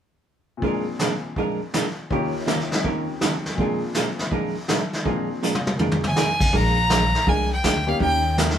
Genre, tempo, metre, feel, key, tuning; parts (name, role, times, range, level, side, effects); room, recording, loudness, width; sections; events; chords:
country, western swing; 162 BPM; 4/4; swing 66% on 8ths; Bb mixolydian; A4 = 443 Hz
bright upright piano; accompaniment; 0.6-8.3 s; Eb2 to Ab4; -30 LUFS; left 3 dB
vintage hollow-body jazz guitar; accompaniment; 0.6-8.5 s; Bb2 to Bb4; -25 LUFS; right 2 dB
vintage brush drum kit; drums; 0.6-8.6 s; brushed snare drum, crash cymbal, hi-hat, kick drum, snare drum, toms; -25 LUFS; equal
clear fiddle; melody; 6.1-8.3 s; F5 to Bb5; -22 LUFS; equal
upright bass; bass; 6.5-8.6 s; Bb1 to Eb2; -23 LUFS; left 1 dB
moderate studio reverb, RT60 0.7 s; band playing live in one room; -20 LUFS; side -9 dB against mid
0.6-6.5 A section; 6.5-8.6 B section
drum fill 5.4-6.2
0.6 Bb7; 2.1 Eb7; 3.6 Bb7; 8.0 Eb7